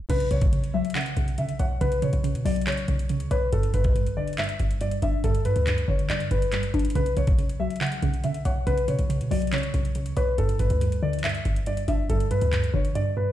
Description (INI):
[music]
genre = hip hop, trap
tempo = 140 BPM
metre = 4/4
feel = half-time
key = B minor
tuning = A4 = 442 Hz
[part]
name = dark concert grand piano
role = melody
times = 0.0-13.3 s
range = A4 to F#5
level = -30 LUFS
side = left 2 dB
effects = none
[part]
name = warbly dusty pluck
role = accompaniment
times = 0.0-13.3 s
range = G2 to C#5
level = -27 LUFS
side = right 1 dB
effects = chorus
[part]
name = short 808-style bass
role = bass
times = 0.0-12.9 s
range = G1 to D3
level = -26 LUFS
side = equal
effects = none
[part]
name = trap drum kit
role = drums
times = 0.1-13.1 s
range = crash cymbal, handclaps, hi-hat, kick drum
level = -29 LUFS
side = equal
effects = none
[sound]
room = little or no reverb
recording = played on a big sound system in a bare room, stone room reverb, tape stop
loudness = -22 LUFS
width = side -12 dB against mid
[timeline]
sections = 0.1-13.3 A section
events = none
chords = 0.1 Bsus2; 3.5 G; 7.0 Bsus2; 10.4 G